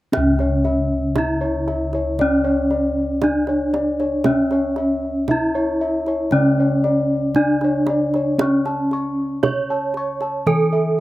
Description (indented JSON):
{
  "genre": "Javanese gamelan",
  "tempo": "58 BPM",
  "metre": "4/4",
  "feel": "straight",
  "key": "unclear",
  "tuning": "A4 = 440 Hz",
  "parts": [
    { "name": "gamelan-type bronze metallophone", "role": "melody", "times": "0.1-11.0 s", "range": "C#4 to C#5", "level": "-20 LUFS", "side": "right 1 dB", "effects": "slapback echo" },
    { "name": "gamelan-type bossed gongs", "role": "arpeggios", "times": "0.1-11.0 s", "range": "C#5 to C#6", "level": "-23 LUFS", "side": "left 2 dB", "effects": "slapback echo" },
    { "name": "gamelan-type bossed gongs", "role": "bass", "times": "0.1-11.0 s", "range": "C#2 to D4+20c", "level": "-24 LUFS", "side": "left 1 dB", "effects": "none" },
    { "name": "kendang", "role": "percussion", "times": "0.1-10.7 s", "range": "none", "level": "-26 LUFS", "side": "right 5 dB", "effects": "none" }
  ],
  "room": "little or no reverb",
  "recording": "recorded outdoors, with no room sound",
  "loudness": "-17 LUFS",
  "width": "side -16 dB against mid",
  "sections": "0.1-11.0 A section",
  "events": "none",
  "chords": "none"
}